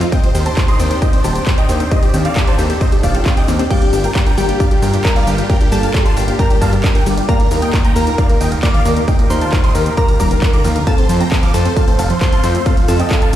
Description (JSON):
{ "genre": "uplifting trance", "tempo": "134 BPM", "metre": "4/4", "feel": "straight", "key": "G minor", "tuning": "A4 = 439 Hz", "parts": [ { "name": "big supersaw lead", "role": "melody", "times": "0.0-13.4 s", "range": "F4 to D6", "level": "-22 LUFS", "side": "equal", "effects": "phaser, sidechain pumping, tape echo" }, { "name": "dark grand piano", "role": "second line", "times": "0.0-13.4 s", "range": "F4 to D6", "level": "-28 LUFS", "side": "left 1 dB", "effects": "none" }, { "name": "lush unison pad", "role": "sustained chords", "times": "0.0-13.4 s", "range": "Eb3 to A4", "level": "-25 LUFS", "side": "equal", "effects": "chorus, sidechain pumping" }, { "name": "wide unison pluck", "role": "arpeggios", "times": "0.0-13.4 s", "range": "Eb2 to G4", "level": "-23 LUFS", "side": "moving between left 5 dB and right 2 dB", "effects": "auto-pan, sidechain pumping, tape echo" }, { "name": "fat analog bass", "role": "bass", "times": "0.0-13.4 s", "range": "Eb1 to G2", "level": "-16 LUFS", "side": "equal", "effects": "sidechain pumping" }, { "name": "big-room dance drum kit", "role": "drums", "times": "0.0-13.4 s", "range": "crash cymbal, handclaps, hi-hat, ride cymbal, shaker", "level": "-25 LUFS", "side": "equal", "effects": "sidechain pumping on hats, sidechain pumping on perc, sidechain pumping on cymbals" }, { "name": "electronic kick drum", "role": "drums", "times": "0.1-13.2 s", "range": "none", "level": "-14 LUFS", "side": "equal", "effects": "none" }, { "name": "glassy synth bell", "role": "second line", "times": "3.7-13.4 s", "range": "G4 to D6", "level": "-22 LUFS", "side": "equal", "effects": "chorus, tape echo" } ], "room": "light reverb", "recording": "played on a big sound system in a bare room, large studio reverb", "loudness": "-12 LUFS", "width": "side -12 dB against mid", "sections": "0.0-13.4 A section", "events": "none", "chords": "0.1 Cmadd9/Eb; 3.7 Gm7; 7.3 Ebadd9; 10.9 F", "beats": "| 0.12 0.57 1.02 1.47 | 1.91 2.36 2.81 3.26 | 3.71 4.15 4.60 5.05 | 5.50 5.94 6.39 6.84 | 7.29 7.74 8.18 8.63 | 9.08 9.53 9.97 10.42 | 10.87 11.32 11.77 12.21 | 12.66 13.11" }